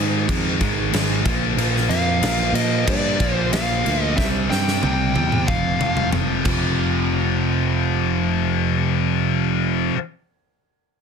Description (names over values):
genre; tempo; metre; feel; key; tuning
hard rock; 92 BPM; 4/4; straight; unclear; A4 = 440 Hz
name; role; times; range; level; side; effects
crunchy overdriven guitar; riff; 0.0-10.0 s; F2 to C4; -24 LUFS; right 13 dB; none
scooped high-gain guitar; riff; 0.0-10.0 s; F2 to C4; -24 LUFS; left 14 dB; distortion
picked electric bass; bass; 0.0-9.9 s; F1 to Bb2; -24 LUFS; equal; none
big rock drum kit; drums; 0.3-6.6 s; crash cymbal, kick drum, snare drum, toms; -24 LUFS; equal; soft clipping on kick
nasal lead guitar with a parked wah; melody; 1.9-6.1 s; D5 to G5; -24 LUFS; left 1 dB; overdrive, slapback echo, plate reverb
room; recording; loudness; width
light reverb; dense, heavily limited modern master; -18 LUFS; side -6 dB against mid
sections
0.0-6.8 A section; 6.8-9.4 B section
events
drum fill 4.2-6.8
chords
0.0 Ab5; 1.3 Bb; 4.2 C; 5.5 F5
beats
0.29 0.94 | 1.58 2.23 2.88 3.53 | 4.18 4.83 5.47 6.12 | 6.77 7.42 8.07 8.72